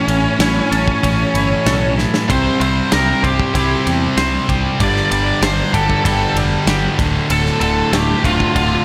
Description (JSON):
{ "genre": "quiet-loud alternative rock", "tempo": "96 BPM", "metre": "4/4", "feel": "straight", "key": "unclear", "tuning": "A4 = 443 Hz", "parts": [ { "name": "octave-fuzz lead guitar", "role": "melody", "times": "0.0-8.8 s", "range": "C#4 to D6", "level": "-21 LUFS", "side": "equal", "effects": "distortion" }, { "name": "twangy electric guitar", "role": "arpeggios", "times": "0.0-8.8 s", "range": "D2 to C5", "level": "-26 LUFS", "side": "equal", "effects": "analog chorus" }, { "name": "thick fuzz guitar", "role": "riff", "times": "0.0-8.8 s", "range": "D2 to C4", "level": "-22 LUFS", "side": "equal", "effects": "distortion" }, { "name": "picked electric bass", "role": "bass", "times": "0.1-8.8 s", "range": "D1 to E2", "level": "-23 LUFS", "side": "equal", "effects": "none" }, { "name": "big rock drum kit", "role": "drums", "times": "0.1-8.7 s", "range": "kick drum, ride cymbal, snare drum", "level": "-23 LUFS", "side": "equal", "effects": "none" }, { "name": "heavy high-gain guitar", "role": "riff", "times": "2.3-8.8 s", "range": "D2 to C4", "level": "-24 LUFS", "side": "equal", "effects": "distortion" } ], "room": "light reverb, small room ambience", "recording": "none", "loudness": "-16 LUFS", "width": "mono", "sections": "0.0-8.8 A section", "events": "drum fill 2.0-2.3", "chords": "0.0 A; 2.3 C; 4.8 Gsus2; 7.0 Dm" }